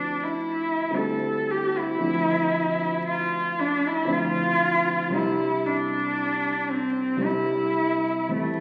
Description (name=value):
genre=classical, impressionist duo for cello and grand piano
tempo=57 BPM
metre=3/4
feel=rubato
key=unclear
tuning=A4 = 437 Hz
part: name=warm cello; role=melody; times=0.0-8.6 s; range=A3 to A4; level=-26 LUFS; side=equal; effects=none
part: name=dark baby grand piano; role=accompaniment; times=0.0-8.6 s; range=A1 to E4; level=-30 LUFS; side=equal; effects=none
room=wet scoring stage reverb, RT60 1.8 s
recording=very old 78 rpm record, vinyl crackle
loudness=-25 LUFS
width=mono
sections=0.0-8.6 A section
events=none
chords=0.0 Dm9; 1.0 C69/D; 2.0 Dm9; 5.2 Cadd9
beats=0.97 | 2.04 3.08 4.12 | 5.17 6.20 7.25 | 8.36